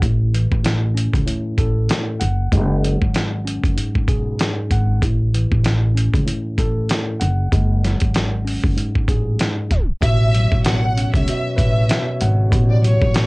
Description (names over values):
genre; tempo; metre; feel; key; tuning
hip hop, boom-bap hip-hop; 96 BPM; 4/4; swing 58% on 16ths; A major; A4 = 442 Hz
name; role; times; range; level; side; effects
tine electric piano; accompaniment; 0.0-13.3 s; G#2 to F#5; -24 LUFS; equal; medium stereo tremolo, cassette tape
upright bass; bass; 0.0-13.3 s; F#1 to C#2; -18 LUFS; equal; none
dusty soul sampler-style drum kit; drums; 0.0-13.3 s; hi-hat, kick drum, snare drum; -20 LUFS; equal; none
rich studio violin section; melody; 10.0-13.3 s; C#5 to F#5; -24 LUFS; equal; analog delay
mellow tonewheel organ; sustained chords; 10.0-13.3 s; B3 to C#5; -30 LUFS; right 1 dB; slow rotary speaker, cassette tape
room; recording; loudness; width
little or no reverb; home recording on cassette, tape stop; -16 LUFS; side -25 dB against mid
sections
0.0-10.0 A section; 10.0-13.3 B section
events
tape stop 9.7-10.0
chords
0.0 A; 2.2 F#sus2; 5.0 A; 7.2 F#sus2; 10.0 A69